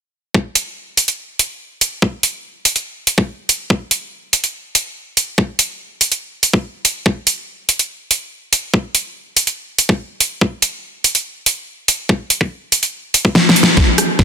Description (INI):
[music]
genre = heavy wobble dubstep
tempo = 143 BPM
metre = 4/4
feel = half-time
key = none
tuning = none
[part]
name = electronic kick drum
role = drums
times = 0.3-14.2 s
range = none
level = -13 LUFS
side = equal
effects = high-pass filter on kick
[part]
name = dubstep drum kit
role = drums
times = 0.6-14.2 s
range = hi-hat, rim click, snare drum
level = -13 LUFS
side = right 1 dB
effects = none
[sound]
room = moderate lush hall reverb, RT60 2.0 s, digital ambience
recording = dense, heavily limited modern master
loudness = -14 LUFS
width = side -6 dB against mid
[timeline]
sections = 0.3-13.8 A section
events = drum fill 13.4-13.8, 13.8-14.2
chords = none